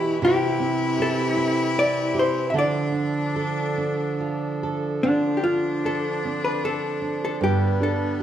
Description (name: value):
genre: celtic folk, Celtic slow air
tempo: 71-79 BPM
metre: 3/4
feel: rubato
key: D dorian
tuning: A4 = 437 Hz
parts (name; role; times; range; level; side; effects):
- bright cello; second line; 0.0-8.2 s; B3 to E4; -28 LUFS; left 3 dB; none
- nylon-string guitar; accompaniment; 0.0-8.2 s; G2 to A4; -26 LUFS; right 4 dB; none
- hand-pumped harmonium; sustained chords; 0.0-8.2 s; B2 to C5; -31 LUFS; equal; none
- hollow-body jazz guitar; melody; 0.2-8.2 s; D4 to E5; -24 LUFS; left 2 dB; none
room: wet recital hall reverb, RT60 1.6 s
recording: recorded in a church or concert hall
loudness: -21 LUFS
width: side -10 dB against mid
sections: 0.0-5.0 A section; 5.0-8.2 B section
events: none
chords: 0.2 C; 2.5 Dm; 5.0 Dm7; 7.4 G